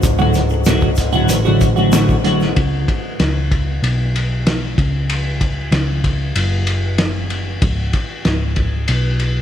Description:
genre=psychedelic rock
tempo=95 BPM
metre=4/4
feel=straight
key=unclear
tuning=A4 = 440 Hz
part: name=string machine, violas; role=sustained chords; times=0.0-2.5 s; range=F#3 to A4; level=-32 LUFS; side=right 3 dB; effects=none
part: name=hollow-body short-scale picked electric bass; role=bass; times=0.0-9.4 s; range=C#1 to C#2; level=-18 LUFS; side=equal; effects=none
part: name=hand-pumped harmonium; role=drone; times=0.0-2.6 s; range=C#2 to G#2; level=-27 LUFS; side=left 3 dB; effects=stereo widening
part: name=cloth-damped thuddy drum kit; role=drums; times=0.0-9.3 s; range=hi-hat, kick drum, ride cymbal, snare drum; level=-19 LUFS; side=equal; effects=none
part: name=egg shaker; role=percussion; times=0.0-2.5 s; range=none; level=-32 LUFS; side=left 14 dB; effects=none
part: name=twelve-string electric guitar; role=riff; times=0.2-2.5 s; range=A2 to F#4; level=-17 LUFS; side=right 1 dB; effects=rotary speaker, double-tracked left and right
room=light reverb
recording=none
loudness=-14 LUFS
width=side -10 dB against mid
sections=0.0-2.6 A section; 2.6-9.4 B section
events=none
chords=0.0 D/C#; 2.6 N.C.

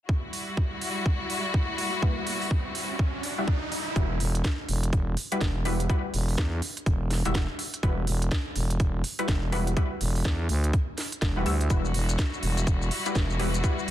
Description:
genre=bass house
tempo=124 BPM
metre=4/4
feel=swing 61% on 16ths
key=E minor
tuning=A4 = 441 Hz
part: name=clear studio string section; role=sustained chords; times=0.1-3.9, 11.7-13.9 s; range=G3 to F#4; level=-32 LUFS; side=left 2 dB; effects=sidechain pumping
part: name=electronic kick drum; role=drums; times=0.1-13.8 s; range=none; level=-27 LUFS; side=equal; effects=none
part: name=riser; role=sound effects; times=1.3-4.0 s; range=none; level=-36 LUFS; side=right 2 dB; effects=none
part: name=garage drum kit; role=drums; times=0.3-13.9 s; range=hi-hat, shaker, snare drum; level=-33 LUFS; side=right 1 dB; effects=none
part: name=orchestra-hit-like synth stab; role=stabs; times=2.0-13.8 s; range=G3 to E5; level=-32 LUFS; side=left 2 dB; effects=built-in reverb, sidechain pumping, ping-pong delay
part: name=growling FM bass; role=bass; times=4.0-13.9 s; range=E1 to E2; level=-27 LUFS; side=equal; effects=overdrive, sidechain pumping
room=little or no reverb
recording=dense, heavily limited modern master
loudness=-25 LUFS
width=side -13 dB against mid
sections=0.1-4.0 A section; 4.0-13.9 B section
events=riser 1.3-4.0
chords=0.1 Emadd9

